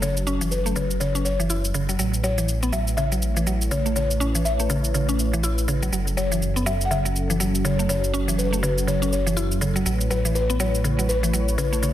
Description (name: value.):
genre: afro house.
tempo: 122 BPM.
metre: 4/4.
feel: swing 59% on 16ths.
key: F# minor pentatonic.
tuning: A4 = 445 Hz.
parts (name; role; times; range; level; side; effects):
buzzing marimba with soft mallets; melody; 0.0-11.9 s; B4 to F#5; -28 LUFS; left 3 dB; tape echo.
warm analog pad; sustained chords; 0.0-11.9 s; F#3 to C#5; -30 LUFS; right 2 dB; chorus.
mallet-like synth pluck; arpeggios; 0.0-11.9 s; C#3 to E4; -26 LUFS; equal; chorus, tape echo.
dark detuned saw bass; bass; 0.0-11.9 s; F#1 to A1; -25 LUFS; equal; none.
cabasa; drums; 0.0-11.9 s; none; -30 LUFS; equal; studio reverb.
room: light reverb.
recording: dense, heavily limited modern master.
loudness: -20 LUFS.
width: side -12 dB against mid.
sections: 0.0-11.9 A section.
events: filter sweep on analog synth pad 0.0-11.9.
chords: 0.0 F#m7; 2.0 A; 5.9 F#m7; 9.9 A.